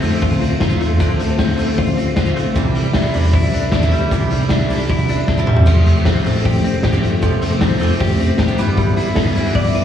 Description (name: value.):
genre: jangly indie pop.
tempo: 154 BPM.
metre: 4/4.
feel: straight.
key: unclear.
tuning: A4 = 440 Hz.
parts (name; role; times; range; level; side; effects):
picked twelve-string acoustic guitar; accompaniment; 0.0-9.8 s; G2 to G4; -22 LUFS; right 7 dB; slapback echo.
direct-recorded clean electric guitar; arpeggios; 0.0-9.8 s; C3 to D5; -21 LUFS; left 7 dB; tremolo, slapback echo.
vintage muted picked electric bass; bass; 0.0-9.8 s; F1 to D3; -19 LUFS; equal; none.
raw garage drum kit; drums; 0.0-9.8 s; crash cymbal, hi-hat, kick drum, snare drum, toms; -18 LUFS; equal; none.
room: studio ambience.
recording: live gig heard through the venue's PA, club reverb, vinyl crackle, small room ambience.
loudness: -13 LUFS.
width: side -9 dB against mid.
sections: 0.0-9.8 A section.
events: drum fill 5.3-5.7.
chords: 0.0 Dm7; 2.6 Cadd9; 5.7 Fadd9; 8.6 G6.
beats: 0.22 0.61 | 1.00 1.39 1.78 2.17 | 2.56 2.95 3.34 3.73 | 4.12 4.51 4.90 5.29 | 5.67 6.06 6.45 6.84 | 7.23 7.62 8.01 8.39 | 8.78 9.17 9.56.